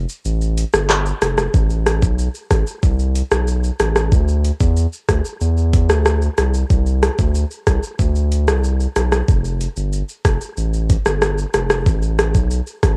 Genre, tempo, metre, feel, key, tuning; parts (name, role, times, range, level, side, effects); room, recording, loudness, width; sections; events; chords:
dancehall; 93 BPM; 4/4; straight; A4 = 440 Hz
saturated sub bass; bass; 0.0-13.0 s; F1 to E2; -20 LUFS; equal
island pop drum kit; drums; 0.1-13.0 s; handclaps, hi-hat, kick drum, rim click, shaker; -19 LUFS; equal; overdrive, cassette tape
light reverb; home recording on cassette; -18 LUFS; mono
0.0-1.5 A section; 1.5-13.0 B section
break 0.0-1.5